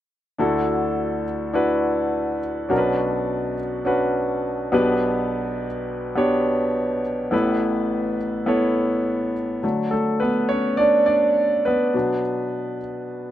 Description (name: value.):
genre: pop.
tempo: 104 BPM.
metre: 4/4.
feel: straight.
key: D major.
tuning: A4 = 439 Hz.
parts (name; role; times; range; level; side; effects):
clear grand piano; solo; 0.4-13.3 s; A1 to D5; -20 LUFS; equal; slapback echo.
room: light reverb.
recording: recorded outdoors, with no room sound.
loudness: -20 LUFS.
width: side -12 dB against mid.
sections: 0.4-9.6 A section; 9.6-13.3 B section.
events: grand piano solo 9.6-13.3.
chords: 0.4 Dadd9; 2.7 Bmadd9; 4.7 G/B; 7.3 Asus2; 9.6 D; 11.9 Bm.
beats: | 0.40 0.98 1.55 2.13 | 2.71 3.29 3.86 4.44 | 5.02 5.60 6.17 6.75 | 7.33 7.90 8.48 9.06 | 9.63 10.21 10.79 11.37 | 11.94 12.52 13.10.